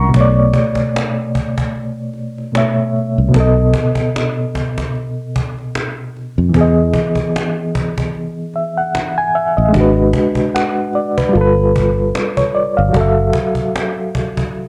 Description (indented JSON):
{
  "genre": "lo-fi hip hop",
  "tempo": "75 BPM",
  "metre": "4/4",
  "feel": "swing 56% on 16ths",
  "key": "unclear",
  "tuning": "A4 = 444 Hz",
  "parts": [
    { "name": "reed electric piano", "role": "accompaniment", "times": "0.0-14.7 s", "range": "B2 to C#6", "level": "-18 LUFS", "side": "equal", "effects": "fast tremolo, cassette tape, low-pass filter" },
    { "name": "fingered electric bass", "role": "bass", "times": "0.0-13.3 s", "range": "F#1 to E#2", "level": "-17 LUFS", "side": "equal", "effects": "none" },
    { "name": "cajon", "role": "drums", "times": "0.1-14.7 s", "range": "none", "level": "-24 LUFS", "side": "equal", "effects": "none" }
  ],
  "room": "moderate studio reverb, RT60 0.5 s",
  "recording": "cassette tape",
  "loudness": "-16 LUFS",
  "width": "mono",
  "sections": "0.0-14.7 A section",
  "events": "none",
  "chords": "0.1 Bm9; 3.3 B7; 6.5 Emaj7; 9.7 G#m7b5; 11.3 G9; 12.9 F#m7"
}